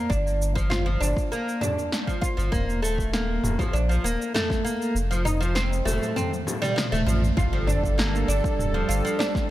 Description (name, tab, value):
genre	organic downtempo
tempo	99 BPM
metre	4/4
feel	straight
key	G minor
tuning	A4 = 440 Hz
part	oud	arpeggios	0.0-9.5 s	F3 to F4	-26 LUFS	right 1 dB	tape echo
part	round analog bass	bass	0.1-9.0 s	D1 to Bb1	-25 LUFS	equal	sidechain pumping
part	deep house drum kit	drums	0.1-9.5 s	cabasa, snare drum, toms	-29 LUFS	equal	overdrive
part	electronic kick drum	drums	0.1-9.5 s	none	-27 LUFS	equal	overdrive
part	frame drum	percussion	1.0-6.6 s	none	-35 LUFS	left 2 dB	none
part	warm analog pad	sustained chords	7.4-9.5 s	G3 to A4	-29 LUFS	right 1 dB	chorus, sidechain pumping
part	impact	sound effects	7.4-9.5 s	none	-34 LUFS	equal	none
room	little or no reverb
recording	none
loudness	-22 LUFS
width	side -14 dB against mid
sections	0.0-7.4 A section; 7.4-9.5 B section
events	kick drops out 5.0-7.4; drum fill 6.2-7.4; band accent 6.8-7.1; impact 7.4-9.5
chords	0.0 Gm7; 2.5 Eb5; 5.0 F; 7.4 Gm7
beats	| 0.10 0.71 1.31 1.92 | 2.53 3.13 3.74 4.34 | 4.95 5.56 6.16 6.77 | 7.38 7.98 8.59 9.19